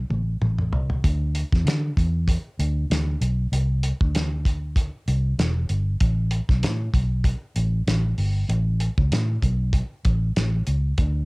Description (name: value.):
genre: indie pop, bedroom pop.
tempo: 97 BPM.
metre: 4/4.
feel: swing 55% on 16ths.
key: unclear.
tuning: A4 = 444 Hz.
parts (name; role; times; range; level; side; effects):
vintage muted fingered electric bass; bass; 0.0-11.2 s; E1 to D3; -22 LUFS; equal; tube saturation.
cloth-damped thuddy drum kit; drums; 0.1-11.1 s; hi-hat, kick drum, snare drum, toms; -23 LUFS; equal; cassette tape.
room: little or no reverb.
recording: home recording on cassette.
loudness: -20 LUFS.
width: side -28 dB against mid.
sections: 0.0-1.0 A section; 1.0-11.2 B section.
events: drum fill 0.0-1.0.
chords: none.